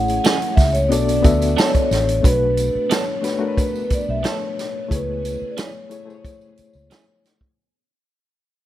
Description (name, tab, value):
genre	lush 1970s-style soul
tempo	90 BPM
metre	4/4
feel	straight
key	B dorian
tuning	A4 = 440 Hz
part	vibraphone with soft mallets	melody	0.0-7.2 s	B4 to F#5	-23 LUFS	equal	none
part	reed electric piano	accompaniment	0.0-7.6 s	A3 to E5	-25 LUFS	left 5 dB	fast tremolo
part	string machine, full ensemble	sustained chords	0.0-7.5 s	C#3 to G#4	-32 LUFS	right 1 dB	ensemble chorus
part	vintage muted fingered electric bass	bass	0.0-6.9 s	A1 to D2	-22 LUFS	equal	none
part	vintage drum kit	drums	0.1-7.6 s	hi-hat, kick drum, snare drum	-19 LUFS	right 1 dB	none
part	tambourine	percussion	0.1-7.4 s	none	-38 LUFS	right 8 dB	none
part	electric guitar through a small old amp	riff	0.2-7.0 s	A3 to A4	-27 LUFS	right 8 dB	none
room	light reverb, studio reverb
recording	none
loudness	-17 LUFS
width	side -13 dB against mid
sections	0.0-2.2 A section; 2.2-7.6 B section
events	fade-out 2.2-7.6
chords	0.0 Amaj7; 0.9 Bm7; 4.9 Amaj7/C#